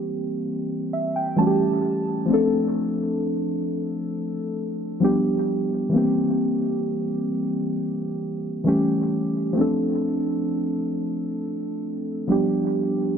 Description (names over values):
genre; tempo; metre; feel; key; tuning
R&B; 66 BPM; 4/4; straight; D minor; A4 = 439 Hz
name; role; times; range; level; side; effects
muted felt-like synth keys; solo; 0.0-13.2 s; E3 to A5; -21 LUFS; equal; chorus, analog delay
room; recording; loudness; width
light reverb, digital ambience; echo-heavy mix; -21 LUFS; side -7 dB against mid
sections
0.0-13.2 A section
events
synth keys fill 0.5-2.3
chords
0.0 C7; 1.4 A7; 2.3 Dm7; 5.0 G7; 5.9 C7; 8.7 A7; 9.6 Dm7; 12.3 G7